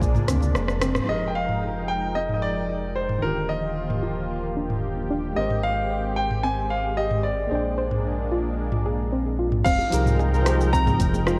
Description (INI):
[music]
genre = sunset chillout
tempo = 112 BPM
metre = 4/4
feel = straight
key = unclear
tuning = A4 = 441 Hz
[part]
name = tine electric piano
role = accompaniment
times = 0.0-11.4 s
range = D3 to Ab5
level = -34 LUFS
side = equal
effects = tape echo
[part]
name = lush unison pad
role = sustained chords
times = 0.0-11.4 s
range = F3 to G5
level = -34 LUFS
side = equal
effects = chorus
[part]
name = round analog bass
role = bass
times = 0.0-11.4 s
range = Eb1 to D2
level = -30 LUFS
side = equal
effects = none
[part]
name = electronic kick drum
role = drums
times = 0.0-0.4, 9.7-11.1 s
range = none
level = -28 LUFS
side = equal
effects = studio reverb
[part]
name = smooth R&B drum kit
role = drums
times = 0.0-11.4 s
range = crash cymbal, hi-hat, rim click, shaker, toms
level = -31 LUFS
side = equal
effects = studio reverb
[part]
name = congas and bongos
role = percussion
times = 0.1-0.9, 9.8-11.2 s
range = none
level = -35 LUFS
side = equal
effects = none
[part]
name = soft round pluck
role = arpeggios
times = 0.3-11.4 s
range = C4 to Eb5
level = -34 LUFS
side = equal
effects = subtle chorus, tape echo
[part]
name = bright concert grand piano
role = melody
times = 1.1-11.4 s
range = Bb4 to Bb5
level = -30 LUFS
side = equal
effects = tape echo
[sound]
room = moderate concert hall reverb, RT60 2.1 s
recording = worn, warbling old tape, cassette tape, warbly pitch drift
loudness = -24 LUFS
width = mono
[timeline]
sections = 0.0-1.1 A section; 1.1-9.7 B section; 9.7-11.4 C section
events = filter sweep on tine electric piano 0.0-1.1; drum fill 0.3-1.1; band accent 1.0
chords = 0.0 Bb9; 1.1 Fm11; 3.2 Ebmaj9; 5.4 Abmaj9; 7.5 Bb13; 9.7 Fm11